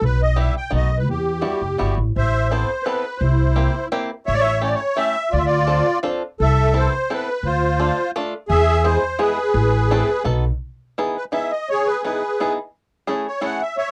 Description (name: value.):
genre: musette waltz.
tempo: 170 BPM.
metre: 3/4.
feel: rubato.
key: A harmonic minor, E major from 10.6 s.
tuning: A4 = 440 Hz.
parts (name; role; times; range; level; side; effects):
musette accordion; melody; 0.0-13.9 s; E4 to G5; -22 LUFS; equal; none.
upright bass; bass; 0.0-10.5 s; F#1 to E2; -22 LUFS; equal; none.
bluegrass banjo; accompaniment; 0.4-13.6 s; G3 to A4; -26 LUFS; equal; none.
room: light reverb.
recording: dry, close 1970s-style studio recording.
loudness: -20 LUFS.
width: mono.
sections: 0.0-2.2 A section; 2.2-10.6 B section; 10.6-13.9 C section.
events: none.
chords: 0.0 Em/B; 0.7 B7; 1.1 Emadd9; 2.2 Amadd9; 3.2 C7; 4.3 A7; 5.3 Dm7; 6.4 Amadd9/C; 7.5 Dm; 8.5 E; 9.5 Am; 10.3 B7; 10.6 Emaj7; 12.7 Amaj7.